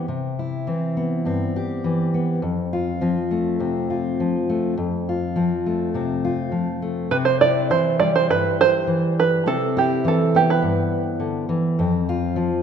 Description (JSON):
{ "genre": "acoustic folk duo or small band", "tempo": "102 BPM", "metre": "4/4", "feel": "straight", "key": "C major", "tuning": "A4 = 440 Hz", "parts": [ { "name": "fingerpicked steel-string acoustic guitar", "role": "accompaniment", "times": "0.0-12.6 s", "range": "F2 to G4", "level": "-21 LUFS", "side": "left 2 dB", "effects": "none" }, { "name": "open-back banjo", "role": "second line", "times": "7.1-11.0 s", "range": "G4 to D5", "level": "-18 LUFS", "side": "right 6 dB", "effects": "none" } ], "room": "wet concert hall reverb, RT60 2.3 s", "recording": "minimal, uncompressed stereo recording", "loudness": "-19 LUFS", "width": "side -7 dB against mid", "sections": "0.0-7.1 A section; 7.1-12.6 B section", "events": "five-string banjo solo 7.1-12.6", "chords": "0.0 Cmaj7; 2.4 F; 7.1 Cmaj7; 11.8 F5", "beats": "| 0.08 0.66 1.25 1.84 | 2.42 3.01 3.60 4.18 | 4.77 5.36 5.94 6.53 | 7.11 7.70 8.28 8.87 | 9.45 10.03 10.61 11.20 | 11.78 12.36" }